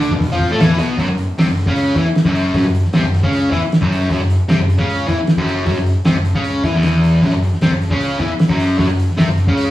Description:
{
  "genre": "garage rock duo or trio",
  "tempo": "154 BPM",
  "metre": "4/4",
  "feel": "straight",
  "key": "unclear",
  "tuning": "A4 = 440 Hz",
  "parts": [
    { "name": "fuzz guitar", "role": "riff", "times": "0.0-9.7 s", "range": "E2 to A4", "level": "-15 LUFS", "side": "equal", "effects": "distortion" },
    { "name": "fuzz picked electric bass", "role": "bass", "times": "0.0-9.7 s", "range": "E1 to A2", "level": "-23 LUFS", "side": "equal", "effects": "overdrive" },
    { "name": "cloth-damped thuddy drum kit", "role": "drums", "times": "0.0-9.7 s", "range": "hi-hat, kick drum, snare drum", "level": "-18 LUFS", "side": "equal", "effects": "none" }
  ],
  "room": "moderate large studio reverb, RT60 1.4 s",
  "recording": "band playing live in one room, studio reverb",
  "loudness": "-13 LUFS",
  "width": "side -14 dB against mid",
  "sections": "1.0-9.7 A section",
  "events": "none",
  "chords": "0.0 B5; 1.0 F#5"
}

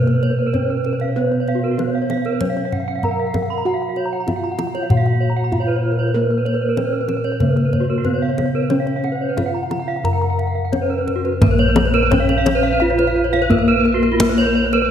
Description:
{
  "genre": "Balinese gamelan",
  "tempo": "86-96 BPM",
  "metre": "4/4",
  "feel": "straight",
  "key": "Bb pelog",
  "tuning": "A4 = 440 Hz",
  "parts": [
    { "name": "gamelan-type bronze metallophone", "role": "melody", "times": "0.0-14.9 s", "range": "Bb3 to Bb4", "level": "-22 LUFS", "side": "equal", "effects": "none" },
    { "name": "gamelan-type bronze metallophone", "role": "arpeggios", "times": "0.0-14.8 s", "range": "F4-30c to Cb6+20c", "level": "-22 LUFS", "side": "right 5 dB", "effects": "slapback echo" },
    { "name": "gamelan-type bossed gongs", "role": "bass", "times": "0.0-14.9 s", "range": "Bb1 to Cb5+20c", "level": "-21 LUFS", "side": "equal", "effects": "none" },
    { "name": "gamelan-type bronze metallophone", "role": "arpeggios", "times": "0.1-14.9 s", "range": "Gb4-20c to Bb5", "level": "-24 LUFS", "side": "left 5 dB", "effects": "none" },
    { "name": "kendang", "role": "percussion", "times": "0.1-14.8 s", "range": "none", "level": "-22 LUFS", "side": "left 1 dB", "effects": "none" }
  ],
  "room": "moderate concert hall reverb, RT60 2.0 s",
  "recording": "none",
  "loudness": "-16 LUFS",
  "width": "side -9 dB against mid",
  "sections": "0.0-11.4 A section; 11.4-14.9 B section",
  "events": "none",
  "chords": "none"
}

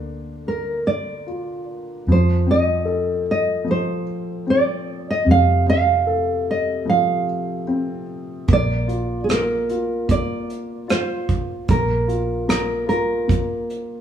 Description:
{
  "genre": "acoustic folk-pop ballad",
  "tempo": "75 BPM",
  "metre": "4/4",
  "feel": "straight",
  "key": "Bb major from 8.5 s",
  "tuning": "A4 = 443 Hz",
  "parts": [
    { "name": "nylon-string guitar", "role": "melody", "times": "0.0-14.0 s", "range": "Ab4 to F5", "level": "-21 LUFS", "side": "right 2 dB", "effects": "none" },
    { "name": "dark upright piano", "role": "accompaniment", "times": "0.0-14.0 s", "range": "C3 to Bb4", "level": "-24 LUFS", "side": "left 3 dB", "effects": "none" },
    { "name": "vintage muted fingered electric bass", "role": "bass", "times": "0.0-14.0 s", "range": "Bb1 to F2", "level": "-22 LUFS", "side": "right 1 dB", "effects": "none" },
    { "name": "soft brush drum kit", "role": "drums", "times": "8.5-13.9 s", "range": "hi-hat, kick drum, rim click", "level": "-22 LUFS", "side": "right 2 dB", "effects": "none" }
  ],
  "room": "moderate large studio reverb, RT60 1.3 s",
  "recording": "band playing live in one room, small room ambience",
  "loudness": "-18 LUFS",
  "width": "side -9 dB against mid",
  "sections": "0.0-8.5 A section; 8.5-14.0 B section",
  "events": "none",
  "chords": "0.0 Bb/D; 2.1 F7; 8.5 Bb5"
}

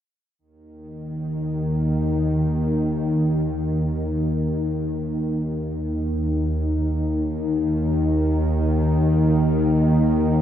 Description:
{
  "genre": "ambient",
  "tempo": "free time",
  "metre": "none",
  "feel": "none",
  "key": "unclear",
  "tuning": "A4 = 440 Hz",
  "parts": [
    { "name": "bowed-like drone", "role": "drone", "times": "0.9-10.4 s", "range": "Eb2 to Eb3", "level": "-20 LUFS", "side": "equal", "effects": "built-in reverb" }
  ],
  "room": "wet cathedral reverb, RT60 4.8 s",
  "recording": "in a vast, echoing space",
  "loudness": "-20 LUFS",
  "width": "side -10 dB against mid",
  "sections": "0.4-10.4 A section",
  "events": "filter sweep on synth drone 0.4-10.4",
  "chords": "none"
}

